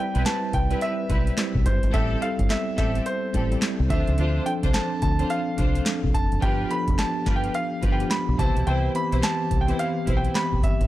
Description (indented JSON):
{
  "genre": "R&B, new jack swing",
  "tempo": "107 BPM",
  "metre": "4/4",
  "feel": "swing 62% on 16ths",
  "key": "unclear",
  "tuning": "A4 = 437 Hz",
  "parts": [
    { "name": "clear concert grand piano", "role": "melody", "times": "0.0-10.9 s", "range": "C5 to B5", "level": "-28 LUFS", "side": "right 1 dB", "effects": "none" },
    { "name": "mellow tine electric piano", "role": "accompaniment", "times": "0.0-10.9 s", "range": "E3 to D5", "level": "-28 LUFS", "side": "equal", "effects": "medium stereo tremolo" },
    { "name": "warm symphonic string section", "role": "stabs", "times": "0.1-10.3 s", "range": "C4 to C5", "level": "-34 LUFS", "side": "left 2 dB", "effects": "none" },
    { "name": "booming analog drum machine", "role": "drums", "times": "0.1-10.9 s", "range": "handclaps, hi-hat, kick drum, snare drum", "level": "-25 LUFS", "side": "equal", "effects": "overdrive" },
    { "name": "deep dub fingered electric bass", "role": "bass", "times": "0.2-10.9 s", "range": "F1 to D2", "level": "-25 LUFS", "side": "equal", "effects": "none" }
  ],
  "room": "little or no reverb",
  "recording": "dark, warm production",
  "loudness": "-21 LUFS",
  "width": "side -15 dB against mid",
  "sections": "0.0-10.9 A section",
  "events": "none",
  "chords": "0.0 Cmaj7; 1.9 Am7; 3.9 Dm7; 6.4 G7; 8.4 Cmaj7"
}